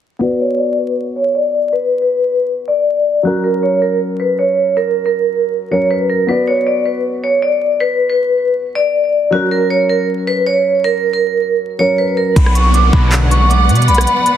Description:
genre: hip hop, trap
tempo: 158 BPM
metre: 4/4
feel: half-time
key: B harmonic minor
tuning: A4 = 440 Hz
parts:
  - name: vibraphone with medium hard mallets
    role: melody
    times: 0.2-14.4 s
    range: F#4 to D6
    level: -14 LUFS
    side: equal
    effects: low-pass filter, digital delay
  - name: dark concert grand piano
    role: accompaniment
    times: 0.2-12.4 s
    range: F#3 to D5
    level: -20 LUFS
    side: left 2 dB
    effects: low-pass filter
  - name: warm symphonic string section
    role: sustained chords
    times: 12.4-14.4 s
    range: B3 to F#5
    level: -20 LUFS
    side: equal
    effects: none
  - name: hard-hitting 808-style bass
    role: bass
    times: 12.4-14.1 s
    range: B1 to B2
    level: -12 LUFS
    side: equal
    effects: none
  - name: trap drum kit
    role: drums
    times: 12.4-14.4 s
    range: handclaps, hi-hat, kick drum, rim click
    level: -15 LUFS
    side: equal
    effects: soft clipping on snare
  - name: downlifter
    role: sound effects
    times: 12.4-14.4 s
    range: none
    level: -22 LUFS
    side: right 2 dB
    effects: none
  - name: big bright polysynth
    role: stabs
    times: 12.9-13.3 s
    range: B2 to F#3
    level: -21 LUFS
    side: left 1 dB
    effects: chorus, digital delay
room: light reverb, small room ambience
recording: dense, heavily limited modern master, vinyl crackle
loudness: -12 LUFS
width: side -10 dB against mid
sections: 0.2-12.4 A section; 12.4-14.4 B section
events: filter sweep 0.2-12.4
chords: 0.2 Bm; 3.2 F#; 6.3 Bm; 9.3 F#; 12.4 Bm

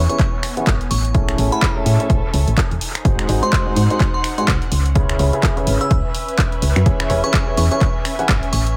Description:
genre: piano house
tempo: 126 BPM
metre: 4/4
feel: swing 59% on 16ths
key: E major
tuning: A4 = 440 Hz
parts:
  - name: glassy synth bell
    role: melody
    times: 0.0-8.7 s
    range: B5 to E6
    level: -29 LUFS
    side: equal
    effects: chorus, phaser, dub echo
  - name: solid FM bass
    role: bass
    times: 0.0-8.8 s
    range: E1 to A2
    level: -20 LUFS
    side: equal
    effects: sidechain pumping
  - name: muted chamber string section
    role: texture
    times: 0.0-8.8 s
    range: B3 to G#5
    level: -30 LUFS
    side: equal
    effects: sidechain pumping
  - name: bright baby grand piano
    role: riff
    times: 0.1-8.3 s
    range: G#2 to F#5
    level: -26 LUFS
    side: equal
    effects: sidechain pumping, low-pass filter, dub echo
  - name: house drum kit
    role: drums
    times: 0.1-8.7 s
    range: finger snaps, handclaps, hi-hat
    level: -27 LUFS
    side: equal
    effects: dub echo
  - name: electronic kick drum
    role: drums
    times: 0.2-8.4 s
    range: none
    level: -21 LUFS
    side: equal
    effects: none
room: little or no reverb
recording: echo-heavy mix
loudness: -17 LUFS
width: mono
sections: 0.0-8.8 A section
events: none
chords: 0.0 E6; 2.8 G#7; 4.7 C#m7; 6.9 E6

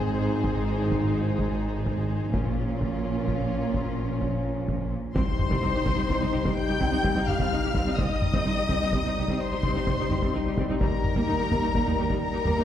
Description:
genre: cinematic, epic orchestral film score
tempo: 85 BPM (dotted quarters)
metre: 12/8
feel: straight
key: C minor from 5.2 s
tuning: A4 = 440 Hz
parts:
  - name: warm symphonic violin section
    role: melody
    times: 0.0-12.6 s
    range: Bb4 to G6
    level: -34 LUFS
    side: left 5 dB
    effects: none
  - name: rich studio violin section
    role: second line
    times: 0.0-12.6 s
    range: F4 to G5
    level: -34 LUFS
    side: left 2 dB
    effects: none
  - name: rich symphonic viola section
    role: accompaniment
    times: 0.0-12.6 s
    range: G3 to G4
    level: -33 LUFS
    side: equal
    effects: none
  - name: mellow French horn section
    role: sustained chords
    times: 0.0-12.6 s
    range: F3 to Eb4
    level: -31 LUFS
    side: left 2 dB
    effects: none
  - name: rich symphonic cello section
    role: bass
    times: 0.0-12.6 s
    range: C2 to Bb2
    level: -31 LUFS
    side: right 2 dB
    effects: none
  - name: rich symphonic double bass section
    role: bass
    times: 0.0-12.5 s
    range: Ab1 to Eb2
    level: -32 LUFS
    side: right 2 dB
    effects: none
  - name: solo taiko drums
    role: drums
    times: 0.4-12.6 s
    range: none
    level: -30 LUFS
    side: equal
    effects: none
  - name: impact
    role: sound effects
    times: 5.2-8.0 s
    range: none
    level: -37 LUFS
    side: equal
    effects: none
room: wet scoring stage reverb, RT60 2.1 s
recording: heard from further back in the room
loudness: -24 LUFS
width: side -10 dB against mid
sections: 0.0-5.2 A section; 5.2-12.6 B section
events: impact 5.2-8.0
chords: 0.0 Ab; 2.3 Bbm; 5.2 Cm; 10.8 Eb

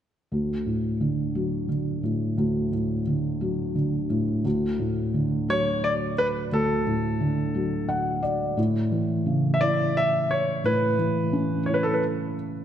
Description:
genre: six-eight pop ballad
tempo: 58 BPM (dotted quarters)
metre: 6/8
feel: straight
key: D major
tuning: A4 = 442 Hz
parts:
  - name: felt-muted upright piano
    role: accompaniment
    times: 0.3-12.6 s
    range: D2 to F#5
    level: -24 LUFS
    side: equal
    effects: none
  - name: clear concert grand piano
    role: melody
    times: 5.5-12.0 s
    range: A4 to E5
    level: -25 LUFS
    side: equal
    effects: none
room: wet concert hall reverb, RT60 1.8 s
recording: nothing above 11.0 kHz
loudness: -23 LUFS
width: side -10 dB against mid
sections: 0.3-4.5 A section; 4.5-12.6 B section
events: felt piano fill 7.5-8.6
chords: 0.3 D; 8.6 Aadd9

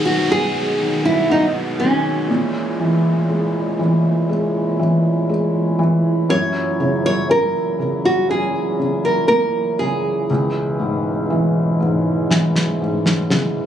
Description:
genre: pop ballad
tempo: 60 BPM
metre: 4/4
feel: straight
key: unclear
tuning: A4 = 440 Hz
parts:
  - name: felt-muted upright piano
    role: accompaniment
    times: 0.0-13.7 s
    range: C#2 to C#4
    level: -19 LUFS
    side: left 1 dB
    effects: none
  - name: mellow French horn section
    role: sustained chords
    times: 0.0-13.7 s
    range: A#2 to F#4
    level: -23 LUFS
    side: right 2 dB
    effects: none
  - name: downlifter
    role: sound effects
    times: 0.0-6.3 s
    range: none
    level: -30 LUFS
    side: equal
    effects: none
  - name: nylon-string guitar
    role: melody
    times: 0.1-11.3 s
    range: C#4 to C#5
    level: -19 LUFS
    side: right 1 dB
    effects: none
  - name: snare drum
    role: drums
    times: 12.3-13.5 s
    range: none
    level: -19 LUFS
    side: equal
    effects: none
room: light reverb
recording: recorded on a phone in the room, club reverb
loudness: -16 LUFS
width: side -9 dB against mid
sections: 0.0-13.7 A section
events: drum fill 12.3-13.7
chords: 0.0 G#m7; 2.3 A#m7b5; 6.3 F#7; 10.3 C#m7

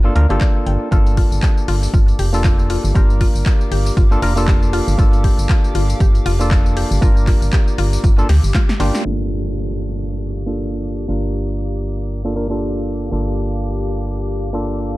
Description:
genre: deep house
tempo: 118 BPM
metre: 4/4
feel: swing 57% on 16ths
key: G minor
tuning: A4 = 438 Hz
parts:
  - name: percussive organ stab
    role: stabs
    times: 0.0-15.0 s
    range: Bb3 to Bb4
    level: -23 LUFS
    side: equal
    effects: chorus, sidechain pumping, tape echo
  - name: organ-like FM bass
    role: bass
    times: 0.0-15.0 s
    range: F1 to D2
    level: -19 LUFS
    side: equal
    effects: tube saturation, sidechain pumping
  - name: mallet-like synth pluck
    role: arpeggios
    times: 0.2-8.9 s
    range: F4 to G5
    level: -28 LUFS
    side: left 3 dB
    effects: chorus, phaser, vintage 12-bit sampler grit, sidechain pumping, digital delay
  - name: dusty soul sampler-style drum kit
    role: drums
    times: 0.2-15.0 s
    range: hi-hat, snare drum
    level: -38 LUFS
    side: equal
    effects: none
  - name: electronic kick drum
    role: drums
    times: 0.4-8.7 s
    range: none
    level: -14 LUFS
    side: equal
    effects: overdrive, studio reverb
  - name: house drum kit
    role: drums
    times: 0.4-14.9 s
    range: crash cymbal, handclaps, hi-hat, snare drum, tambourine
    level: -28 LUFS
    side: left 1 dB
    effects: studio reverb
  - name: hollow soft pad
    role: sustained chords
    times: 1.3-15.0 s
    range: G4 to D6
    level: -31 LUFS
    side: left 2 dB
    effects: chorus, vintage 12-bit sampler grit, sidechain pumping
  - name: downlifter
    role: sound effects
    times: 9.2-13.1 s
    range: none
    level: -34 LUFS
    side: equal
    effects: none
room: little or no reverb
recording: dark, warm production, low-pass filter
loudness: -14 LUFS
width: side -19 dB against mid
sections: 0.0-9.1 A section; 9.1-15.0 B section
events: drum fill 8.3-9.1; band accent 8.9; filter sweep 9.1-15.0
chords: 0.0 Gm7

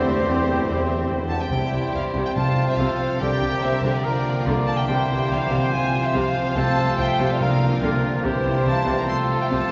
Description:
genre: cinematic, heroic adventure film score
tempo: 142 BPM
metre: 4/4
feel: straight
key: C mixolydian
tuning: A4 = 440 Hz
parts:
  - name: rich symphonic violin section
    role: melody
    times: 0.0-9.7 s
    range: C5 to C6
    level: -31 LUFS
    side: equal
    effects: none
  - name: clear oboe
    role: second line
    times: 0.0-9.7 s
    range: F4 to D5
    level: -33 LUFS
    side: equal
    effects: none
  - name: large flute ensemble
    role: second line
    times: 0.0-9.7 s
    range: Bb4 to A5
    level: -35 LUFS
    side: equal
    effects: none
  - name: rich symphonic violin section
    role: second line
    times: 0.0-9.7 s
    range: E4 to C5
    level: -34 LUFS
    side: equal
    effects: none
  - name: rich studio viola section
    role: accompaniment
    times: 0.0-9.7 s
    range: C3 to E5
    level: -32 LUFS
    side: equal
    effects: none
  - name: mellow French horn section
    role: sustained chords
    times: 0.0-9.7 s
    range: E3 to G4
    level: -33 LUFS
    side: equal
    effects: none
  - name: warm trombone section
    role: sustained chords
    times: 0.0-9.7 s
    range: C3 to G3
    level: -34 LUFS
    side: equal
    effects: none
  - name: concert harp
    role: arpeggios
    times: 0.0-9.7 s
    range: C3 to G5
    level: -30 LUFS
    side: equal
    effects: none
  - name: dark trumpet section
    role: stabs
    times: 0.0-9.7 s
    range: G4 to C5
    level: -31 LUFS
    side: equal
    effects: none
  - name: clear tuba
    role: bass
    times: 0.0-1.5 s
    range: E1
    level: -38 LUFS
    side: equal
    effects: none
  - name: rich symphonic cello section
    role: bass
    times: 0.0-9.6 s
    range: C3 to C4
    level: -33 LUFS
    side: equal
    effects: none
  - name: rich symphonic double bass section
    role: bass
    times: 0.0-9.6 s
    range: C2 to E2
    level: -33 LUFS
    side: equal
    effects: none
  - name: timpani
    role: percussion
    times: 2.4-3.0, 5.7-8.0 s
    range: C3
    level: -32 LUFS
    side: equal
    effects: none
room: wet cathedral reverb, RT60 5.5 s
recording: recorded in a church or concert hall, nothing above 7.6 kHz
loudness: -22 LUFS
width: mono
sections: 0.0-1.5 A section; 1.5-9.7 B section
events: none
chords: 0.0 C/E; 1.5 C; 2.4 F/C; 3.2 Gm/C; 4.0 Bb/C; 4.9 C; 5.7 Fm/C; 6.6 F/C; 7.4 Bb/C; 8.2 C; 9.1 F/C

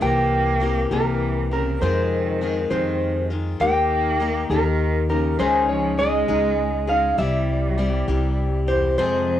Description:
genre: acoustic folk duo or small band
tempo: 67 BPM (dotted quarters)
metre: 6/8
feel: straight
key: unclear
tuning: A4 = 440 Hz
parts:
  - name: electric guitar through a small old amp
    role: melody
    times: 0.0-9.4 s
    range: Bb4 to G5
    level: -23 LUFS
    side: right 1 dB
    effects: tremolo, cassette tape
  - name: rich cello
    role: second line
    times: 0.0-9.4 s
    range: E2 to Bb3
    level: -29 LUFS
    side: right 7 dB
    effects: cassette tape
  - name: picked steel-string acoustic guitar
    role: accompaniment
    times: 0.0-9.4 s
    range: F2 to Ab4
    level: -23 LUFS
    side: left 5 dB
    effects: cassette tape
  - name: upright bass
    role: bass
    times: 0.0-8.9 s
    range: C2 to F2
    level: -24 LUFS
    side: right 1 dB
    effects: transformer saturation
room: moderate studio reverb, RT60 0.5 s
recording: home recording on cassette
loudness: -19 LUFS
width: side -11 dB against mid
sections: 0.0-9.0 A section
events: none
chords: 0.0 C7; 1.8 Fm7; 3.6 Eb; 5.4 Dbsus2; 7.2 C

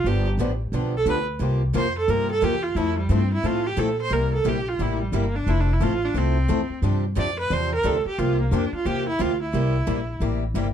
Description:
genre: acoustic string swing (jazz manouche)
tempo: 177 BPM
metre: 4/4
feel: swing 62% on 8ths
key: unclear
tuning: A4 = 440 Hz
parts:
  - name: bright viola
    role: melody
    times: 0.0-10.2 s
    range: G3 to D5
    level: -25 LUFS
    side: right 2 dB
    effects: plate reverb
  - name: upright bass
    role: bass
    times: 0.0-10.7 s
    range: F1 to Bb2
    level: -24 LUFS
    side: equal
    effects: none
  - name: picked old ladder-braced acoustic guitar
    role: accompaniment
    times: 0.1-10.7 s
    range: C3 to A4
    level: -29 LUFS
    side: left 8 dB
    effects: none
  - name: picked steel-string acoustic guitar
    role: accompaniment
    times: 0.1-10.7 s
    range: C3 to A4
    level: -30 LUFS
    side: right 7 dB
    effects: none
room: moderate studio ambience, RT60 0.5 s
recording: dark, warm production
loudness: -21 LUFS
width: side -9 dB against mid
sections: 0.0-4.1 A section; 4.1-10.7 A section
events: viola solo 0.0-10.7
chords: 0.1 G7; 1.4 C7sus4; 2.8 Fmaj7; 4.1 C7; 5.5 Fmaj7; 6.8 G7sus4; 8.2 C7sus4; 9.5 C7

